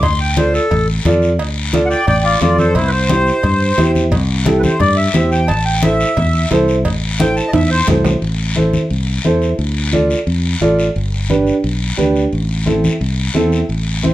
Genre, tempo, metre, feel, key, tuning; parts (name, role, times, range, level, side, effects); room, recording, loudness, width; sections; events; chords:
latin, cumbia; 176 BPM; 4/4; straight; A minor; A4 = 437 Hz
accordion; melody; 0.0-7.9 s; E4 to C6; -17 LUFS; equal
fingered electric bass; bass; 0.0-14.1 s; G1 to G2; -17 LUFS; equal
congas; percussion; 0.0-14.1 s; -20 LUFS; left 1 dB
cowbell and timbales; percussion; 0.0-8.1 s; -23 LUFS; right 4 dB
guiro; percussion; 0.0-14.1 s; -26 LUFS; left 4 dB
warm upright piano; accompaniment; 0.4-14.1 s; C4 to D5; -17 LUFS; right 2 dB
moderate studio reverb, RT60 0.7 s; -12 LUFS; side -14 dB against mid
0.0-8.2 A section; 8.2-14.1 B section
accordion solo 0.0-8.2; drum fill 7.5-8.2
0.0 Dm; 2.8 C; 5.5 Am; 9.6 Dm; 11.0 G; 12.3 Am